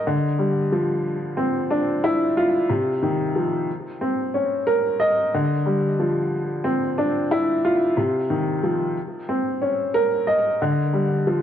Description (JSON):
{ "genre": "hip hop", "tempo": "91 BPM", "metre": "4/4", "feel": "swing 63% on 16ths", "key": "unclear", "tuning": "A4 = 440 Hz", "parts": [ { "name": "dark upright piano", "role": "solo", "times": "0.0-11.4 s", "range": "C3 to Eb5", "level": "-20 LUFS", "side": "equal", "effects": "high-pass filter, low-pass filter, tape echo" } ], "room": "moderate small room ambience, RT60 0.5 s", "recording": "dry, gritty hardware recording", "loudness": "-20 LUFS", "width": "side -10 dB against mid", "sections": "0.0-10.6 A section", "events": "none", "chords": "0.1 Dm11; 2.7 Cmadd11; 3.7 Bbmadd9; 5.3 Dm11; 8.0 Cmadd11; 9.0 Bbmadd9; 10.6 Dmadd11" }